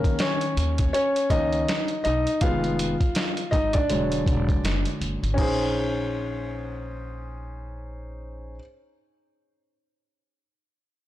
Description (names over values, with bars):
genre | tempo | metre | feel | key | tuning
hip hop, jazz-hop | 81 BPM | 4/4 | swing 60% on 16ths | unclear | A4 = 439 Hz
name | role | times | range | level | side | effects
warm concert grand piano | accompaniment | 0.0-8.6 s | D3 to F5 | -26 LUFS | left 1 dB | none
boom bap sampler-style drum kit | drums | 0.0-5.6 s | crash cymbal, hi-hat, kick drum, snare drum | -26 LUFS | equal | none
upright bass | bass | 0.6-8.6 s | E1 to D#2 | -29 LUFS | equal | transformer saturation
room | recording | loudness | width
light reverb, digital ambience | blown-out, overdriven recording, overdrive | -22 LUFS | side -14 dB against mid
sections
0.0-5.4 A section; 5.4-8.3 B section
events
grand piano solo 0.0-5.4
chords
0.0 Bmaj9 (rootless); 2.4 Fm7b5; 3.9 E13; 5.4 Bbm11